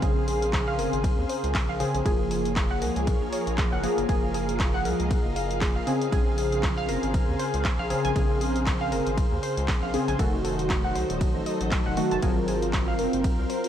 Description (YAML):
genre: deep house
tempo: 118 BPM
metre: 4/4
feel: swing 57% on 16ths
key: Bb minor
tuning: A4 = 440 Hz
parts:
  - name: soft string machine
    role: sustained chords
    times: 0.0-13.7 s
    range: Ab4 to F5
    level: -35 LUFS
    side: equal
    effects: ensemble chorus, sidechain pumping
  - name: warbly dusty pluck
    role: arpeggios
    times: 0.0-13.5 s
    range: Ab4 to A5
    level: -33 LUFS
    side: equal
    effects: chorus, phaser, sidechain pumping, tape echo
  - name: warm analog keys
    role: stabs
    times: 0.0-13.7 s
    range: Db3 to Bb4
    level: -28 LUFS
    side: equal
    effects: chorus, sidechain pumping, tape echo
  - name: round analog bass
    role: bass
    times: 0.0-13.5 s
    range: Eb1 to Eb2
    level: -31 LUFS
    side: equal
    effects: sidechain pumping
  - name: electronic kick drum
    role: drums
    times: 0.0-13.4 s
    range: none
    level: -26 LUFS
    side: equal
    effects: none
  - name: punchy analog drum machine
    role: drums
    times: 0.0-13.7 s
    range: handclaps, hi-hat, ride cymbal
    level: -35 LUFS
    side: equal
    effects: none
  - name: warbly tape-like pad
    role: texture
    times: 0.0-13.7 s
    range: Gb3 to C6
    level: -35 LUFS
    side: left 2 dB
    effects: chorus, built-in reverb, sidechain pumping
room: light reverb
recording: none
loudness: -23 LUFS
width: side -10 dB against mid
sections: 0.0-13.7 A section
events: none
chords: 0.0 Bbm9; 2.1 Gbmaj9; 5.9 Bbm9; 10.2 F7b9; 12.2 Ab13